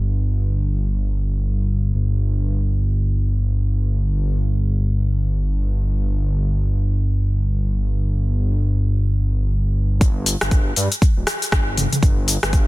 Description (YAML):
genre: afro house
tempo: free time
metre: none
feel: none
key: unclear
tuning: A4 = 440 Hz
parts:
  - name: dark detuned saw bass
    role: bass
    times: 0.0-12.7 s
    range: D1 to G2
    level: -18 LUFS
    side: equal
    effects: sidechain pumping
  - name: afro-pop drum kit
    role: drums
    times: 10.0-12.7 s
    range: hi-hat, rim click, shaker, toms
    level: -21 LUFS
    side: left 1 dB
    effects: low-pass filter on hats, low-pass filter on perc, soft clipping on snare, low-pass filter on snare, low-pass filter on toms, low-pass filter on room
  - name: electronic kick drum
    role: drums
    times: 10.0-12.7 s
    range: none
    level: -16 LUFS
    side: equal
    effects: none
room: little or no reverb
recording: dense, heavily limited modern master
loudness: -17 LUFS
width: side -19 dB against mid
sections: 0.0-10.0 A section; 10.0-12.7 B section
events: drop 10.0-12.7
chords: none